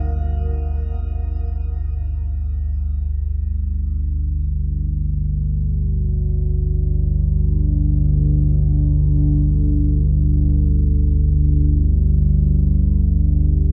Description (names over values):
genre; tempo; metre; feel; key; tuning
dark ambient drone; free time; none; none; unclear; A4 = 440 Hz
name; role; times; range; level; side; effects
deep dark ambient pad; sustained chords; 0.0-0.6 s; Eb4 to Gb5; -42 LUFS; equal; chorus, built-in reverb, shimmer reverb
deep rumbling drone; drone; 0.0-13.7 s; G1 to D2; -19 LUFS; equal; built-in reverb, lush chorus
room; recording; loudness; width
wet echo chamber reverb, RT60 2.2 s; none; -19 LUFS; mono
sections
0.6-13.7 A section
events
none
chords
0.0 Ebmadd9; 0.6 G5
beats
free time